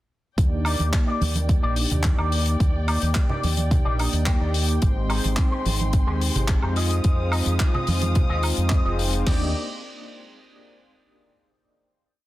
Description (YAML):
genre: nu-disco, nu disco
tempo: 108 BPM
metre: 4/4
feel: straight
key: Eb major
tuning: A4 = 440 Hz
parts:
  - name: warm analog pad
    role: accompaniment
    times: 0.4-9.5 s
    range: Ab3 to D6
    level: -29 LUFS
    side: equal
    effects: chorus, tremolo, tape echo
  - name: muted studio violin section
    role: sustained chords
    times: 0.4-9.5 s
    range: Ab3 to Eb6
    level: -36 LUFS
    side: equal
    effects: sidechain pumping
  - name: fingered electric bass with an envelope filter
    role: bass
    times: 0.4-9.5 s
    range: F1 to F2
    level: -24 LUFS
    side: equal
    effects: none
  - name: damped 70s drum kit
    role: drums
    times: 0.4-9.2 s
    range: handclaps, hi-hat, woodblock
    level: -29 LUFS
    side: left 2 dB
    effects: none
  - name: house drum kit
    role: drums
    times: 0.4-9.4 s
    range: crash cymbal, kick drum, snare drum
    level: -22 LUFS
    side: equal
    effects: none
  - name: electric guitar with an envelope filter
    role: riff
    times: 0.6-9.5 s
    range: Eb4 to G5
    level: -31 LUFS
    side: left 2 dB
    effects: ensemble chorus, tape echo
  - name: congas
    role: percussion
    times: 0.8-8.3 s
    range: none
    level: -30 LUFS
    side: right 2 dB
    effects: none
room: small room ambience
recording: dense, heavily limited modern master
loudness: -20 LUFS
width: side -16 dB against mid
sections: 0.4-9.3 groove; 9.3-11.5 final chord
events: filter sweep on analog synth pad 0.4-9.3; clean electric guitar fill 3.7-4.8, 8.4-9.3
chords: 0.4 Ebmaj7; 4.8 Abmaj7; 6.8 Fm7; 9.3 Ebmaj7